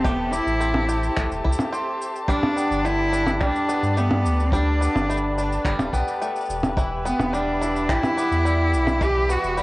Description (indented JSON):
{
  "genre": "folktronica",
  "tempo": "107 BPM",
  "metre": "4/4",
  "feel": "straight",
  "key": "G major",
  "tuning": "A4 = 441 Hz",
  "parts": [
    { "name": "clear cello", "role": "melody", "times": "0.0-9.6 s", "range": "B3 to G4", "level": "-24 LUFS", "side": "equal", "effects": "cassette tape" },
    { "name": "glockenspiel with rubber mallets", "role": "second line", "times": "0.0-9.6 s", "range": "G5 to D6", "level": "-30 LUFS", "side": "left 2 dB", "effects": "cassette tape, tape echo" },
    { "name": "muted string quartet", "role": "sustained chords", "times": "0.0-9.6 s", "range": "G4 to B5", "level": "-31 LUFS", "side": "equal", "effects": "cassette tape, plate reverb" },
    { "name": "bluegrass banjo", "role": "arpeggios", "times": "0.0-9.6 s", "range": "E3 to G4", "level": "-29 LUFS", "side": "equal", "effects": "cassette tape, analog delay" },
    { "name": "warm sub bass", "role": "bass", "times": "0.0-9.6 s", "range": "D1 to G2", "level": "-25 LUFS", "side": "equal", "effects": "none" },
    { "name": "kick drum", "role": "drums", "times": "0.0-9.1 s", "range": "none", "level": "-26 LUFS", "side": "equal", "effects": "none" },
    { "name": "electronic shaker, percussion blips and finger snaps", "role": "drums", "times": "0.1-9.6 s", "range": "none", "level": "-27 LUFS", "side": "equal", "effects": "overdrive" }
  ],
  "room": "light reverb",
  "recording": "home recording on cassette, vinyl crackle, nothing above 10.7 kHz",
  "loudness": "-20 LUFS",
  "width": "side -20 dB against mid",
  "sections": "0.0-9.6 A section",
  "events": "none",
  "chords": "0.0 Am7; 2.3 Gadd9; 6.8 Em"
}